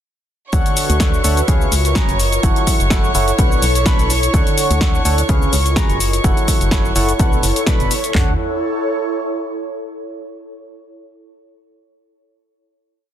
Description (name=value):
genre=piano house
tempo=126 BPM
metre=4/4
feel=swing 54% on 16ths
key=D major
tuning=A4 = 440 Hz
part: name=warm studio violin section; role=sustained chords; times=0.5-8.2 s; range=C#5 to C#6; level=-24 LUFS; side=right 1 dB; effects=vintage 12-bit sampler grit, sidechain pumping
part: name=percussive organ stab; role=riff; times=0.5-8.3 s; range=B2 to B5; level=-22 LUFS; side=equal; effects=chorus, sidechain pumping, ping-pong delay
part: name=organ-like FM bass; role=bass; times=0.5-8.4 s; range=F#1 to D2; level=-19 LUFS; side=equal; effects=sidechain pumping
part: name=house drum kit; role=drums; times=0.5-8.3 s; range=handclaps, kick drum, toms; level=-17 LUFS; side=equal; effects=overdrive
part: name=punchy analog drum machine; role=drums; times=0.5-8.1 s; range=hi-hat, shaker, snare drum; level=-21 LUFS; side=left 2 dB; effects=none
part: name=airy breathy pad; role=texture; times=0.5-10.0 s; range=E4 to E5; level=-24 LUFS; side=right 1 dB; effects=chorus, sidechain pumping
room=little or no reverb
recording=dense, heavily limited modern master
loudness=-14 LUFS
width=side -10 dB against mid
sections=0.5-8.1 drop; 8.1-10.1 final chord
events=drop 0.5-8.1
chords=0.5 Dmaj7; 1.5 C#7; 2.2 F#m7; 3.4 Bm7; 4.3 Dmaj7; 5.3 C#7; 6.0 F#m7; 7.2 Bm7; 8.1 Dmaj7